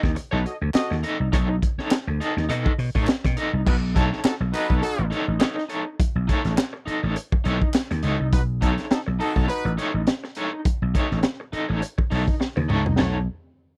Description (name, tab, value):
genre	funk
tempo	103 BPM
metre	4/4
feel	swing 56% on 16ths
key	B mixolydian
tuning	A4 = 439 Hz
part	electric guitar at the edge of break-up	accompaniment	0.0-13.2 s	D#4 to D#5	-30 LUFS	equal	tremolo
part	vintage slap bass	bass	0.0-13.3 s	A1 to B2	-26 LUFS	equal	none
part	crunchy breakbeat drum kit	drums	0.0-13.1 s	crash cymbal, hi-hat, kick drum, snare drum, toms	-25 LUFS	equal	none
part	warm horn section	second line	0.3-13.2 s	A3 to D#5	-30 LUFS	equal	tube saturation
part	group handclap	percussion	0.7-7.9 s	none	-40 LUFS	equal	none
room	little or no reverb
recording	dry, close 1970s-style studio recording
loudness	-23 LUFS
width	mono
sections	0.0-3.7 A section; 3.7-13.0 B section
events	drum fill 12.4-13.0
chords	0.0 B9